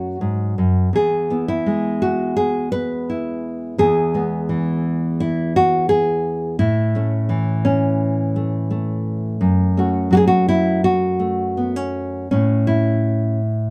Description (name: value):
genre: folk, solo fingerstyle acoustic guitar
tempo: 84 BPM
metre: 4/4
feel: rubato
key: A major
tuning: A4 = 440 Hz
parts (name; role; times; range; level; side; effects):
- nylon-string guitar; solo; 0.0-13.7 s; E2 to B4; -19 LUFS; equal; none
room: light reverb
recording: band playing live in one room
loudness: -19 LUFS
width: mono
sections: 0.0-12.3 A section; 12.3-13.7 B section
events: none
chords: 0.0 F#5; 0.9 E; 6.6 A; 9.4 F#m; 12.3 A